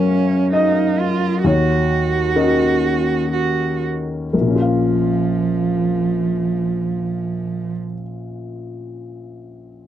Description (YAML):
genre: neoclassical piano and strings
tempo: 58-67 BPM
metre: 3/4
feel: rubato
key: Bb minor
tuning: A4 = 440 Hz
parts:
  - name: rich cello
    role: second line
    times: 0.0-7.7 s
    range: F3 to Gb4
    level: -21 LUFS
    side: right 7 dB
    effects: none
  - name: warm upright piano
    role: accompaniment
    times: 0.0-9.9 s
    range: Bb1 to F5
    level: -19 LUFS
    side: left 2 dB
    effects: none
room: light reverb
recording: dry, close 1970s-style studio recording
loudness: -16 LUFS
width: side -11 dB against mid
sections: 0.0-4.3 A section; 4.3-7.3 B section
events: slowing down 0.0-4.3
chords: 0.0 Gbmaj7; 1.4 Ebm7; 4.3 Bbm